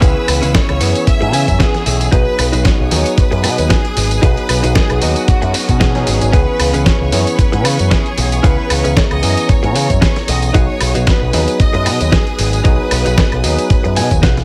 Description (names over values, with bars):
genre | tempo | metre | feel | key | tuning
nu-disco, nu disco | 114 BPM | 4/4 | swing 55% on 16ths | B major | A4 = 440 Hz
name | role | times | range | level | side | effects
rich studio violin section | melody | 0.0-14.2 s | F#4 to E5 | -24 LUFS | equal | digital delay
barky tine electric piano | accompaniment | 0.0-14.4 s | E3 to G#4 | -23 LUFS | equal | sidechain pumping
rich chamber string section | sustained chords | 0.0-14.4 s | B4 to E6 | -30 LUFS | equal | sidechain pumping
direct-recorded clean electric guitar | riff | 0.0-14.4 s | C#4 to G#5 | -24 LUFS | equal | subtle chorus
picked electric bass with an envelope filter | bass | 0.0-14.4 s | G#1 to C#3 | -18 LUFS | equal | tube saturation
dusty soul sampler-style drum kit | drums | 0.0-14.4 s | hi-hat, snare drum, tambourine, woodblock | -21 LUFS | equal | studio reverb
electronic kick drum | drums | 0.0-14.3 s | none | -16 LUFS | equal | studio reverb
swell | sound effects | 5.5-6.3 s | none | -31 LUFS | equal | none
room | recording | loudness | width
little or no reverb | none | -13 LUFS | mono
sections
0.0-14.4 A section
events
clean electric guitar fill 1.1-2.1, 13.7-14.4; swell 5.5-6.3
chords
0.0 C#m7; 2.1 B6; 6.3 C#m7; 10.5 B6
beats
| 0.02 0.55 1.07 1.60 | 2.12 2.65 3.18 3.70 | 4.23 4.76 5.28 5.81 | 6.33 6.86 7.39 7.91 | 8.44 8.97 9.49 10.02 | 10.55 11.07 11.60 12.12 | 12.65 13.18 13.70 14.23